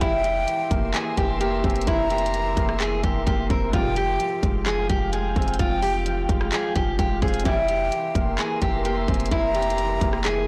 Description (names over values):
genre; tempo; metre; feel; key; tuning
hip hop, trap; 129 BPM; 4/4; half-time; unclear; A4 = 440 Hz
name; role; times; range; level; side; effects
picked steel-string acoustic guitar; melody; 0.0-10.4 s; E4 to Bb4; -28 LUFS; equal; low-pass filter, digital delay
breathy jazz flute; second line; 0.0-10.2 s; F5 to Bb5; -32 LUFS; equal; digital delay
felt-muted upright piano; accompaniment; 0.0-10.5 s; E3 to C4; -33 LUFS; equal; low-pass filter
glassy FM pad; sustained chords; 0.0-10.5 s; Bb4 to C6; -36 LUFS; equal; ensemble chorus, built-in reverb
long sustained 808-style bass; bass; 0.0-10.5 s; F1; -30 LUFS; equal; none
trap drum kit; drums; 0.0-10.4 s; handclaps, hi-hat, kick drum, rim click; -28 LUFS; equal; none
muted symphonic string section; stabs; 3.7-4.2, 7.5-7.9 s; Ab2 to G3; -35 LUFS; equal; none
room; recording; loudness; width
small room reverb; blown-out, overdriven recording, vinyl crackle, overdrive, lossy compression artefacts; -23 LUFS; mono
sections
0.0-10.5 A section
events
none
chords
0.0 C7/F; 3.7 Fmadd9; 7.5 C7/F